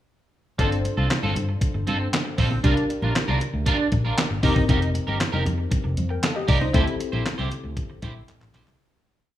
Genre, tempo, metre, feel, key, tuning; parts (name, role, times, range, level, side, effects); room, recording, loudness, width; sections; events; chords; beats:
early-eighties boogie funk; 117 BPM; 4/4; straight; G minor; A4 = 439 Hz
funky polysynth comp; accompaniment; 0.6-8.8 s; C4 to G5; -29 LUFS; left 3 dB; chorus
electric guitar at the edge of break-up; riff; 0.6-8.7 s; C4 to C5; -27 LUFS; right 3 dB; analog chorus
vintage muted fingered electric bass; bass; 0.6-8.8 s; F1 to G2; -25 LUFS; equal
detuned 8-bit digital drum machine; drums; 0.6-8.8 s; handclaps, hi-hat, kick drum, snare drum; -24 LUFS; equal
congas; percussion; 0.6-8.8 s; -35 LUFS; left 1 dB
little or no reverb; rough home demo mix, small room reverb; -21 LUFS; side -12 dB against mid
0.6-8.8 verse
fade-out 6.7-8.8; drum fill 8.3-8.8
0.6 G9sus4; 2.6 C9sus4 (rootless); 4.4 F9sus4; 6.7 D9sus4 (rootless)
| 0.59 1.10 1.61 2.13 | 2.64 3.15 3.67 4.18 | 4.69 5.20 5.72 6.23 | 6.74 7.25 7.77 8.28